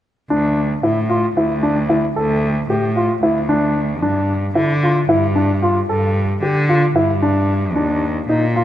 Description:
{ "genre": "contemporary instrumental, contemporary", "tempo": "226 BPM (eighths)", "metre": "7/8", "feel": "straight", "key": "D minor", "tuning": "A4 = 441 Hz", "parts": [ { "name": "dark concert grand piano", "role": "arpeggios", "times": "0.3-8.6 s", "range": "D4 to A4", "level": "-17 LUFS", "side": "left 1 dB", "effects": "none" }, { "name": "rich cello", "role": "bass", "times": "0.3-8.6 s", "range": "D2 to D3", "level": "-18 LUFS", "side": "equal", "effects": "none" } ], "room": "moderate scoring stage reverb, RT60 2.2 s", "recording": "lossy compression artefacts", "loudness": "-15 LUFS", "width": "side -12 dB against mid", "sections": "0.3-8.6 A section", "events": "none", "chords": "0.3 Dsus2; 4.0 G5; 7.8 Eb5" }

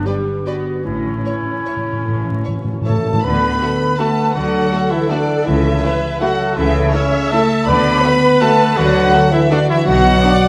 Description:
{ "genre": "classical, orchestral ballroom waltz", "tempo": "143-177 BPM", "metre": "3/4", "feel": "rubato", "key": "D major", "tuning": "A4 = 445 Hz", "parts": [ { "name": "warm clarinet", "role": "second line", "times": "0.0-3.0 s", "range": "E4 to G4", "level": "-26 LUFS", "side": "equal", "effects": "none" }, { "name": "rich studio viola section", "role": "accompaniment", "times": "0.0-10.5 s", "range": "G3 to E5", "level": "-25 LUFS", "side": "equal", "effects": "none" }, { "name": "concert harp", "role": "arpeggios", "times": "0.0-10.5 s", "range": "G2 to F#5", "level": "-25 LUFS", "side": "equal", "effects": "none" }, { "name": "rich studio violin section", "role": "melody", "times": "0.1-10.5 s", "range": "C#5 to B5", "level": "-26 LUFS", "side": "equal", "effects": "none" }, { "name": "rich studio violin section", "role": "second line", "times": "0.1-10.3 s", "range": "A3 to D5", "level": "-29 LUFS", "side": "equal", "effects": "none" }, { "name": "timpani", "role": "percussion", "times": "0.8-3.2 s", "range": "A2", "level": "-25 LUFS", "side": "equal", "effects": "none" }, { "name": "rich studio cello section", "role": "bass", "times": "0.9-10.2 s", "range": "A2 to D3", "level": "-26 LUFS", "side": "equal", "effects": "none" }, { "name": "rich studio double bass section", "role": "bass", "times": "0.9-10.2 s", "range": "A1 to D2", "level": "-26 LUFS", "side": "equal", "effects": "none" }, { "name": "mellow French horn section", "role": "sustained chords", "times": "2.8-10.5 s", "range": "C#3 to B3", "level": "-20 LUFS", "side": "equal", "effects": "none" }, { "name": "hollow flute section", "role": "second line", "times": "2.9-10.5 s", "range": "C#5 to B5", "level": "-24 LUFS", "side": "equal", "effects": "none" }, { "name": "warm trumpet", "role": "stabs", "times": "2.9-10.3 s", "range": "C#4 to B4", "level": "-23 LUFS", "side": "equal", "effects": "none" } ], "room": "wet scoring stage reverb, RT60 1.5 s", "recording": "vinyl crackle", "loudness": "-16 LUFS", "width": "mono", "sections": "0.0-3.2 A section; 3.2-10.5 B section", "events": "timpani fill 0.9-3.2", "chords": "0.0 G; 0.9 A; 3.2 D; 5.5 A7/C#; 7.7 D; 9.9 Bm" }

